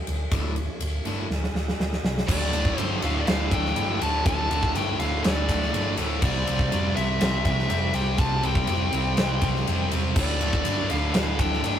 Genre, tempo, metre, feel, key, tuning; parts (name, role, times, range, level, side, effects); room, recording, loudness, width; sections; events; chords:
hard rock; 122 BPM; 4/4; straight; D minor; A4 = 440 Hz
hollow-body short-scale picked electric bass; bass; 0.1-11.8 s; D1 to C2; -28 LUFS; equal
huge arena drum kit; drums; 0.1-11.8 s; crash cymbal, kick drum, ride cymbal, snare drum; -26 LUFS; equal
overdriven semi-hollow guitar; riff; 0.3-11.8 s; D2 to C4; -31 LUFS; right 4 dB; tremolo
tight distorted guitar; riff; 0.3-11.8 s; D2 to C4; -32 LUFS; left 5 dB; distortion
nasal lead guitar with a parked wah; melody; 2.3-11.8 s; D5 to A5; -29 LUFS; left 2 dB; overdrive
heavy high-gain guitar; riff; 2.3-11.8 s; D2 to C4; -31 LUFS; equal; distortion
moderate stone room reverb, RT60 1.3 s; rough rehearsal-room recording, tube saturation; -22 LUFS; side -9 dB against mid
0.0-2.3 A section; 2.3-11.8 B section
drum fill 1.3-2.3
0.0 D5; 6.2 C; 10.2 D5